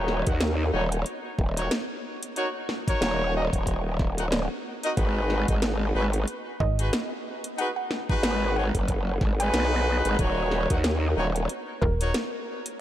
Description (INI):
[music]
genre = glitch hop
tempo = 92 BPM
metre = 4/4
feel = swing 57% on 16ths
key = G# minor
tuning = A4 = 440 Hz
[part]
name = bright horn section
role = stabs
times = 0.0-12.1 s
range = D#4 to F#5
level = -30 LUFS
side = equal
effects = sidechain pumping, low-pass filter, tape echo
[part]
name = growl bass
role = bass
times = 0.0-11.5 s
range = D#1 to D#2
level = -26 LUFS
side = equal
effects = chorus, overdrive
[part]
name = drum and bass drum kit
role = drums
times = 0.1-12.8 s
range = hi-hat, snare drum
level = -32 LUFS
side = equal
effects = none
[part]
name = electronic kick drum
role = drums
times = 0.3-12.0 s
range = none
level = -26 LUFS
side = equal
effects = none
[part]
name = woody wave-folded pluck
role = melody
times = 6.6-12.0 s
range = A#4 to G#5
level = -34 LUFS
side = right 1 dB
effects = chorus, vintage 12-bit sampler grit, tape echo
[part]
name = slap-like FM bass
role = bass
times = 6.6-6.9, 11.8-12.1 s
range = D#1 to G#1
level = -25 LUFS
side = equal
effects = none
[sound]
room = moderate huge ambient reverb, RT60 4.7 s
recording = dreamy mix soaked in reverb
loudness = -24 LUFS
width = side -12 dB against mid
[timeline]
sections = 0.0-12.8 A section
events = none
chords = 0.0 D#m7; 5.0 G#m7; 10.2 D#m7